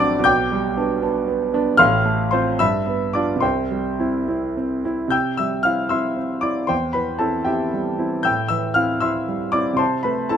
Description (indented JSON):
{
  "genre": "classical, romantic character piece for solo piano",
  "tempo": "70-79 BPM (dotted quarters)",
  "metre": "6/8",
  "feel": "rubato",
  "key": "C major",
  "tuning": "A4 = 439 Hz",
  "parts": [
    { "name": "clear concert grand piano", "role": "solo", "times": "0.0-10.4 s", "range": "A1 to A6", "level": "-18 LUFS", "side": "equal", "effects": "none" }
  ],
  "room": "light reverb",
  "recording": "none",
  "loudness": "-18 LUFS",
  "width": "side -8 dB against mid",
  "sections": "0.0-5.1 A section; 5.1-10.4 B section",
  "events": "none",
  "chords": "0.3 G/B; 1.8 F/A; 2.6 G7; 3.4 C; 6.7 C/E; 8.3 Am7; 9.8 Am/C"
}